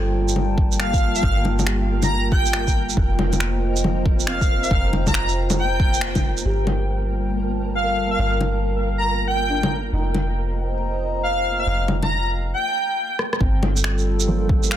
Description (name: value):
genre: future garage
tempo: 138 BPM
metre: 4/4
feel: swing 65% on 16ths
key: G minor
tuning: A4 = 440 Hz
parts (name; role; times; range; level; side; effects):
- felt-muted upright piano; accompaniment; 0.0-14.8 s; F3 to Bb4; -31 LUFS; right 1 dB; sidechain pumping, tape echo
- dark analog pad; sustained chords; 0.0-14.8 s; G3 to Bb5; -27 LUFS; equal; chorus, vintage 12-bit sampler grit, sidechain pumping
- soft 808-style bass; bass; 0.0-14.8 s; F1 to G1; -24 LUFS; equal; tube saturation, sidechain pumping
- flickering grainy texture; texture; 0.5-12.5 s; Bb3 to Bb4; -34 LUFS; equal; built-in reverb
- electronic shaker, bongos, finger snaps and rim click; drums; 0.3-14.8 s; none; -24 LUFS; left 1 dB; soft clipping on snare
- electronic kick drum; drums; 0.6-6.2, 13.4-14.6 s; none; -20 LUFS; equal; none
- airy dreamy lead; melody; 0.8-14.8 s; F5 to Bb5; -25 LUFS; equal; chorus, analog delay
room: light reverb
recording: dense, heavily limited modern master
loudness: -18 LUFS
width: side -11 dB against mid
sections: 0.0-6.5 A section; 6.5-13.4 B section; 13.4-14.8 C section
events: band accent 6.0; drum fill 13.2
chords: 0.0 Gm7; 3.0 F9sus4; 6.5 Gm7; 9.9 F9sus4; 13.4 Gm7